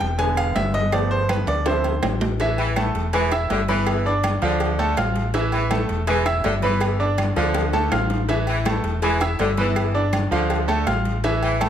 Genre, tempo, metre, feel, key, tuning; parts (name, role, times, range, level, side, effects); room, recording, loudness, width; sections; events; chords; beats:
latin, salsa; 163 BPM; 4/4; straight; A minor; A4 = 440 Hz
bright baby grand piano; accompaniment; 0.0-11.7 s; C3 to F6; -23 LUFS; right 2 dB
fingered electric bass; bass; 0.0-11.7 s; E1 to D2; -24 LUFS; left 1 dB
cowbell and bongos; percussion; 0.0-11.7 s; -30 LUFS; left 6 dB
agogo bells and timbales; percussion; 0.2-11.7 s; -30 LUFS; right 3 dB
congas; percussion; 0.2-11.7 s; -30 LUFS; left 3 dB
claves; percussion; 0.4-11.7 s; -35 LUFS; right 6 dB
clear saxophone section; second line; 2.6-11.7 s; D3 to E3; -25 LUFS; left 1 dB
light reverb; -19 LUFS; side -9 dB against mid
0.0-2.4 A section; 2.4-11.7 B section
grand piano solo 0.0-2.4; drum fill 1.5-2.4, 7.4-8.3
0.2 E7; 0.9 G7; 1.7 Dm7; 2.4 A5; 3.1 E; 3.9 G7; 4.6 Dm; 5.3 A5; 6.1 E; 6.8 G7; 7.6 Dm; 8.3 A5; 9.0 E; 9.8 G7; 10.5 Dm
0.19 0.56 | 0.92 1.29 1.66 2.03 | 2.40 2.76 3.13 3.50 | 3.87 4.24 4.60 4.97 | 5.34 5.71 6.08 6.45 | 6.82 7.18 7.55 7.92 | 8.29 8.66 9.03 9.40 | 9.77 10.13 10.50 10.87 | 11.24 11.61